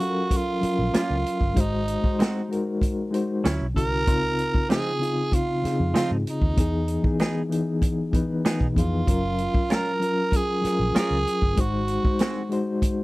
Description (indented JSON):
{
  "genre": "lush 1970s-style soul",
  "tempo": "96 BPM",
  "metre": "4/4",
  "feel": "straight",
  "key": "Db major",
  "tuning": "A4 = 440 Hz",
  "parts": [
    { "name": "growling tenor saxophone", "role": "melody", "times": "0.0-12.5 s", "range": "Eb4 to Bb4", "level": "-27 LUFS", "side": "right 2 dB", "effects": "none" },
    { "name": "mellow reed electric piano", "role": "accompaniment", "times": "0.0-13.0 s", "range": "Db3 to F5", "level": "-26 LUFS", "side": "left 2 dB", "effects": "fast tremolo" },
    { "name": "vintage drum kit", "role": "drums", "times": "0.0-13.0 s", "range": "hi-hat, kick drum, snare drum", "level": "-24 LUFS", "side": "equal", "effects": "none" },
    { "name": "vintage muted fingered electric bass", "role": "bass", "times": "0.6-12.1 s", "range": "Gb1 to B2", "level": "-27 LUFS", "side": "equal", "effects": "none" },
    { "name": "semi-hollow electric guitar", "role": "riff", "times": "0.9-12.4 s", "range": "F3 to Bb4", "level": "-29 LUFS", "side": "right 3 dB", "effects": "warbly pitch drift" }
  ],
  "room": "little or no reverb",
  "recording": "dry, close 1970s-style studio recording",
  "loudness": "-21 LUFS",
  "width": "side -20 dB against mid",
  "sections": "0.0-13.0 A section",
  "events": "none",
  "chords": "0.0 Gbmaj7; 1.6 Ab7; 3.4 Dmaj9; 4.1 Dbmaj9; 6.6 Emaj7; 9.1 Gbmaj7; 11.6 Ab7"
}